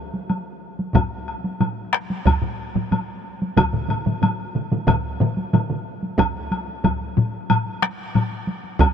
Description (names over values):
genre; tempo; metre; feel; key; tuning
japanese traditional, taiko drum ensemble; 92 BPM; 4/4; straight; none; none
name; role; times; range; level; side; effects
solo taiko drums; percussion; 0.1-8.9 s; none; -26 LUFS; right 1 dB; none
woodblock; percussion; 0.3-8.9 s; none; -27 LUFS; left 2 dB; none
taiko ensemble; percussion; 0.9-8.3 s; none; -24 LUFS; left 4 dB; none
taiko ensemble; percussion; 0.9-8.9 s; none; -22 LUFS; right 1 dB; none
taiko ensemble; percussion; 3.6-5.8 s; none; -26 LUFS; right 5 dB; none
room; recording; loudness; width
light reverb; none; -20 LUFS; side -8 dB against mid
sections
0.0-6.2 A section; 6.2-8.9 B section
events
none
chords
none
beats
0.30 | 0.95 1.61 2.26 2.92 | 3.57 4.22 4.88 5.53 | 6.19 6.84 7.49 8.15 | 8.80